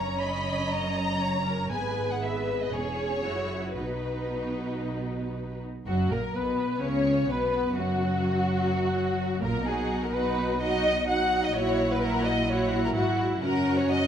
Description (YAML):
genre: classical, dramatic, fast romantic movement for symphony orchestra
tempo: 113-129 BPM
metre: 4/4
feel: straight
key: B major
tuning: A4 = 441 Hz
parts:
  - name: warm symphonic violin section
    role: melody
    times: 0.0-14.1 s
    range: F#4 to B5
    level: -35 LUFS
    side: left 2 dB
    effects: none
  - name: rich symphonic violin section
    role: second line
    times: 0.0-14.1 s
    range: D#4 to F#5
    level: -30 LUFS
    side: left 1 dB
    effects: none
  - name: rich symphonic viola section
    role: accompaniment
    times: 0.0-14.1 s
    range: F#3 to C#5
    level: -32 LUFS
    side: right 2 dB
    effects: none
  - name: rich symphonic cello section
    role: bass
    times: 0.0-14.1 s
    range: E2 to C#3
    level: -33 LUFS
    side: right 2 dB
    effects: none
  - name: warm studio double bass section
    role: bass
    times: 0.0-14.1 s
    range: E1 to C#2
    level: -35 LUFS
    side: right 3 dB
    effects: none
  - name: dark French horn section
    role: sustained chords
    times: 5.9-14.1 s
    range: F#3 to E4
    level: -31 LUFS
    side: left 3 dB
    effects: none
room: wet recital hall reverb, RT60 1.5 s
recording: none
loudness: -25 LUFS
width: side -9 dB against mid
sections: 0.0-5.9 A section; 5.9-14.1 B section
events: none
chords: 0.0 F#; 1.7 G#m; 2.7 C#m/E; 3.2 F#sus2; 3.8 B; 5.9 B5/F#; 7.8 F#; 9.7 B; 11.6 F#7/A#; 13.4 F#5